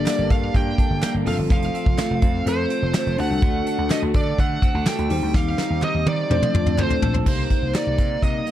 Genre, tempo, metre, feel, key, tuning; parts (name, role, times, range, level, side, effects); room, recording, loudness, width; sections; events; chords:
1980s-style pop; 125 BPM; 4/4; straight; A4 = 441 Hz
high-gain lead guitar; melody; 0.0-8.5 s; C5 to G5; -26 LUFS; right 2 dB; distortion
bell-like tine electric piano; accompaniment; 0.0-8.5 s; A3 to D5; -27 LUFS; left 5 dB; phaser
chorused pulse-width pad; sustained chords; 0.0-8.5 s; C3 to A4; -31 LUFS; left 2 dB
electric guitar at the edge of break-up; riff; 0.0-8.5 s; F3 to A4; -30 LUFS; right 4 dB; wide subtle chorus
vintage slap bass; bass; 0.0-8.4 s; F1 to F3; -25 LUFS; equal
soft brush drum kit; drums; 0.1-8.5 s; crash cymbal, hi-hat, kick drum, snare drum, tambourine, toms; -22 LUFS; equal
group handclap; percussion; 0.1-7.9 s; -42 LUFS; left 4 dB
light reverb, studio reverb; dark, warm production; -18 LUFS; side -12 dB against mid
0.0-7.3 A section; 7.3-8.5 B section
drum fill 5.3-7.3
0.0 Gmadd9; 1.3 F; 3.2 D; 5.1 Cm; 6.3 F6; 7.3 Cm7